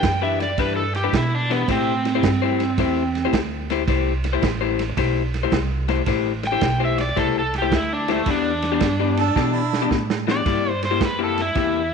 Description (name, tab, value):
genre	electric blues shuffle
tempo	109 BPM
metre	4/4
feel	swing 67% on 8ths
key	unclear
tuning	A4 = 440 Hz
part	overdriven slide guitar	melody	0.0-11.9 s	A3 to G5	-23 LUFS	right 2 dB	none
part	electric guitar through a small old amp	riff	0.0-11.8 s	C3 to C5	-23 LUFS	left 13 dB	none
part	upright bass	bass	0.0-11.9 s	A1 to B2	-25 LUFS	right 1 dB	none
part	vintage drum kit	drums	0.0-11.7 s	kick drum, ride cymbal, snare drum	-26 LUFS	right 5 dB	none
part	warm harmonica	second line	9.2-9.8 s	E4 to A4	-26 LUFS	right 10 dB	none
room	moderate echo chamber reverb, RT60 1.9 s, small room reverb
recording	1960s-style stereo with parts hard left and right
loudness	-18 LUFS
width	side -6 dB against mid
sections	0.0-11.9 A section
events	drum fill 9.4-10.5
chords	0.0 Em7; 1.7 Am7; 8.3 Em7; 10.5 C7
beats	0.03 0.58 1.13 | 1.68 2.23 2.77 3.32 | 3.87 4.42 4.97 5.52 | 6.07 6.62 7.17 7.72 | 8.27 8.82 9.37 9.92 | 10.47 11.02 11.56